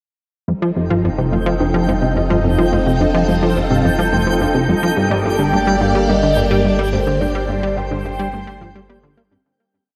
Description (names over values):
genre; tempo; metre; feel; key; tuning
ambient, sequencer-driven space music; 107 BPM; 4/4; straight; G minor; A4 = 441 Hz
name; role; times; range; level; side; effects
phased string machine; sustained chords; 0.5-9.4 s; Bb3 to Eb5; -23 LUFS; equal; ensemble chorus, phaser
warbly dusty pluck; arpeggios; 0.5-9.4 s; G2 to G4; -26 LUFS; equal; chorus, delay
plucky analog bass; riff; 0.5-9.4 s; F2 to Bb3; -21 LUFS; equal; delay
warm sub bass; bass; 0.5-9.4 s; F1 to G1; -26 LUFS; equal; none
twinkling granular texture; texture; 1.1-9.5 s; G5; -28 LUFS; equal; built-in reverb
mellow horn-like synth lead; melody; 5.2-8.9 s; C5 to G5; -25 LUFS; equal; subtle chorus, delay
room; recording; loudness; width
wet lush hall reverb, RT60 2.4 s; dreamy mix soaked in reverb; -17 LUFS; mono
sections
0.5-9.5 A section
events
fade-out 6.5-9.5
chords
0.5 F7; 5.0 Gmadd9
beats
| 0.48 1.04 1.60 2.16 | 2.73 3.29 3.85 4.41 | 4.97 5.53 6.09 6.65 | 7.21 7.77 8.33 8.89